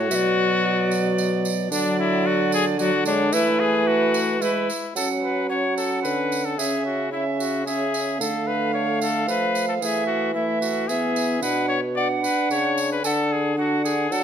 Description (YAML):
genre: classical, renaissance-style consort dance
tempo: 112 BPM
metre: 3/4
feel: straight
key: unclear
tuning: A4 = 442 Hz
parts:
  - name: bright cornet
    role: melody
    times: 0.0-14.2 s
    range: D4 to D5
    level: -25 LUFS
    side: left 5 dB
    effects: none
  - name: alto recorder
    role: second line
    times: 0.0-14.2 s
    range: B4 to G#5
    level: -26 LUFS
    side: right 7 dB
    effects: none
  - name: mellow trombone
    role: accompaniment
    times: 0.0-14.2 s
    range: F#3 to D4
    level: -27 LUFS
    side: left 2 dB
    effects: none
  - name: dark bassoon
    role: bass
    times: 0.0-14.2 s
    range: B2 to F#3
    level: -27 LUFS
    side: right 1 dB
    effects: none
  - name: tambourine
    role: percussion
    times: 0.1-14.2 s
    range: none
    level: -32 LUFS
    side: right 9 dB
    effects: none
room: moderate recital hall reverb, RT60 1.5 s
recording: none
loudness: -20 LUFS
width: side -8 dB against mid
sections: 0.0-5.0 A section; 5.0-14.2 B section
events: none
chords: 0.1 Bm; 1.7 D; 3.3 Esus4; 4.4 E; 5.0 F#5; 6.6 C#m; 8.2 Dm; 9.8 Esus4; 10.9 E; 11.4 Bm; 13.0 D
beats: | 0.11 0.64 1.18 | 1.72 2.25 2.79 | 3.33 3.87 4.42 | 4.97 5.51 6.05 | 6.59 7.13 7.67 | 8.21 8.74 9.28 | 9.82 10.36 10.89 | 11.43 11.97 12.50 | 13.04 13.58 14.12